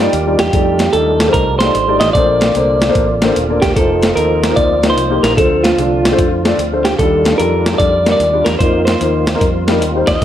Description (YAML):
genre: uptempo gospel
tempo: 149 BPM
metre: 4/4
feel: swing 66% on 8ths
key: unclear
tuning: A4 = 440 Hz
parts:
  - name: clean electric guitar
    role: melody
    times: 0.0-10.2 s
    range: F4 to Eb5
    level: -15 LUFS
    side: right 2 dB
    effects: spring reverb
  - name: dark concert grand piano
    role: accompaniment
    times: 0.0-10.2 s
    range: Bb2 to D5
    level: -17 LUFS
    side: left 3 dB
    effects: none
  - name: tonewheel organ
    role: sustained chords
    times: 0.0-10.2 s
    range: D3 to F4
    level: -22 LUFS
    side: right 1 dB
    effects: fast rotary speaker, chorus vibrato
  - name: fingered electric bass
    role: bass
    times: 0.0-10.2 s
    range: Eb1 to F2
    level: -20 LUFS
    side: equal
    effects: none
  - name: boom bap sampler-style drum kit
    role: drums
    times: 0.1-10.2 s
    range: hi-hat, kick drum, snare drum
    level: -17 LUFS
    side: equal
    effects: none
  - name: mellow French horn section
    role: sustained chords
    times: 3.8-10.2 s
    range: Bb3 to C5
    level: -28 LUFS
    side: left 1 dB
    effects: none
room: light reverb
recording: none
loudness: -11 LUFS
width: side -10 dB against mid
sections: 0.0-10.2 A section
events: none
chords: 0.0 Ebmaj9; 0.5 F13; 2.2 Bbmaj9; 3.8 F7sus4; 5.4 Dm7; 7.0 Ebmaj9#11; 8.6 F7sus4; 9.4 F9sus4